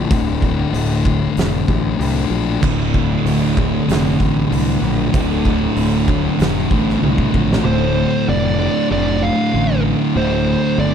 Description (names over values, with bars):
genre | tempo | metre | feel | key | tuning
stoner and doom metal | 96 BPM | 4/4 | straight | D minor | A4 = 440 Hz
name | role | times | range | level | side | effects
thick fuzz guitar | riff | 0.0-10.9 s | D2 to D3 | -19 LUFS | left 9 dB | distortion
fuzz fingered electric bass | bass | 0.0-10.9 s | D1 to C2 | -20 LUFS | right 1 dB | overdrive
oversized low-tuned drum kit | drums | 0.1-7.7 s | crash cymbal, hi-hat, kick drum, snare drum, toms | -21 LUFS | right 1 dB | none
thick fuzz guitar | riff | 2.6-10.9 s | D2 to D3 | -20 LUFS | right 16 dB | distortion
fuzz lead guitar | melody | 7.7-10.9 s | C5 to F5 | -21 LUFS | right 2 dB | distortion
room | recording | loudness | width
little or no reverb | none | -14 LUFS | side -8 dB against mid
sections
0.0-7.7 A section; 7.7-10.9 B section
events
drum fill 7.0-7.7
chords
0.0 D5; 7.7 Dm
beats
| 0.11 0.74 1.36 1.99 | 2.62 3.25 3.88 4.51 | 5.14 5.77 6.39 7.02 | 7.65 8.28 8.90 9.53 | 10.16 10.79